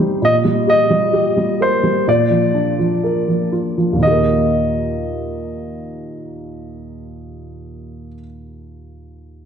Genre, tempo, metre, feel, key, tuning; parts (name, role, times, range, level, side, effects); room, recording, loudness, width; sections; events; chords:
pop ballad; 60-66 BPM; 4/4; straight; Eb major; A4 = 440 Hz
bright concert grand piano; melody; 0.0-8.2 s; C5 to Eb5; -18 LUFS; left 1 dB; digital delay
warm upright piano; accompaniment; 0.0-9.5 s; Eb2 to Bb4; -18 LUFS; right 1 dB
wet concert hall reverb, RT60 1.9 s; dark, warm production; -14 LUFS; side -7 dB against mid
0.0-4.0 A section; 4.0-8.0 B section
slowing down 0.0-4.0
0.2 Eb/Bb; 2.1 Bb; 4.0 Eb